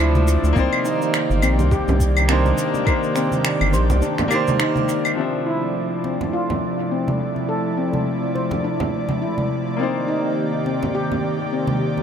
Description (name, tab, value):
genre	sunset chillout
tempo	104 BPM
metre	4/4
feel	swing 57% on 16ths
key	D phrygian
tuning	A4 = 440 Hz
part	bright concert grand piano	accompaniment	0.0-12.0 s	Eb3 to E5	-25 LUFS	moving between left 5 dB and right 3 dB	auto-pan, analog delay
part	airy breathy pad	sustained chords	0.0-12.0 s	C3 to D5	-24 LUFS	equal	chorus
part	steel pan	arpeggios	0.0-11.8 s	C4 to C5	-26 LUFS	left 2 dB	low-pass filter, analog delay
part	round analog bass	bass	0.0-4.0 s	G1 to D2	-18 LUFS	equal	tube saturation
part	electronic cabasa, claves and finger snaps	drums	0.2-5.2 s	none	-25 LUFS	left 1 dB	dub echo
part	congas	percussion	0.2-12.0 s	none	-27 LUFS	right 2 dB	dub echo
part	electronic kick drum	drums	0.6-3.0 s	none	-22 LUFS	equal	none
room	moderate plate reverb, RT60 2.7 s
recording	echo-heavy mix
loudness	-18 LUFS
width	side -8 dB against mid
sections	0.0-5.2 A section; 5.2-12.0 B section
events	none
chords	0.0 Dm9; 0.6 Cm9; 5.2 Dm9; 9.8 Cm9